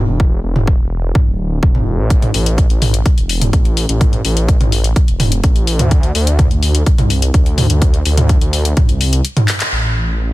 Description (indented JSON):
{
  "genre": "melodic techno",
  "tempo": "126 BPM",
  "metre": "4/4",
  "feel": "straight",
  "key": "unclear",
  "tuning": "A4 = 445 Hz",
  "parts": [
    { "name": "swelling detuned saw bass", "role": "bass", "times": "0.0-10.3 s", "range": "D1 to D2", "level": "-15 LUFS", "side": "equal", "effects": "sidechain pumping" },
    { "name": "electronic kick drum", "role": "drums", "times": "0.2-8.9 s", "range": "none", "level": "-12 LUFS", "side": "equal", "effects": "none" },
    { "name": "house drum kit", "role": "drums", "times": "0.6-10.3 s", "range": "handclaps, hi-hat, toms", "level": "-17 LUFS", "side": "equal", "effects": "low-pass filter on toms, low-pass filter on hats, low-pass filter on snare, low-pass filter on room" }
  ],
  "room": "little or no reverb",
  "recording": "dense, heavily limited modern master",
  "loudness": "-11 LUFS",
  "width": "side -18 dB against mid",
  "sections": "0.0-9.7 A section",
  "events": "drum fill 9.5; band accent 9.6",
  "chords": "none",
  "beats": "| 0.20 0.68 1.15 1.63 | 2.10 2.58 3.06 3.53 | 4.01 4.49 4.96 5.44 | 5.91 6.39 6.87 7.34 | 7.82 8.29 8.77 9.25 | 9.72 10.20"
}